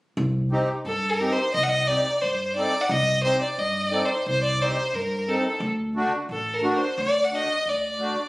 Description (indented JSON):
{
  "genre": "klezmer",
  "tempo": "88 BPM",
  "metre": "2/4",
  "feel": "straight",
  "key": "C dorian sharp4",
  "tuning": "A4 = 440 Hz",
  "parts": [
    { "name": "upright bass", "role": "bass", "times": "0.2-8.1 s", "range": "A1 to G2", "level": "-29 LUFS", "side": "equal", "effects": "none" },
    { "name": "accordion", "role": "accompaniment", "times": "0.5-8.2 s", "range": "A3 to A4", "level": "-26 LUFS", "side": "equal", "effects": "light tremolo tuning" },
    { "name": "clear violin", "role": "melody", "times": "0.9-8.3 s", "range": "A4 to F#5", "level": "-23 LUFS", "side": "equal", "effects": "plate reverb" }
  ],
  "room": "moderate small room reverb, RT60 0.5 s",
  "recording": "recorded on a phone in the room, studio reverb, compression",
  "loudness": "-21 LUFS",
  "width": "side -21 dB against mid",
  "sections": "0.2-8.3 A section",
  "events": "none",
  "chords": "0.2 Cm; 5.6 D"
}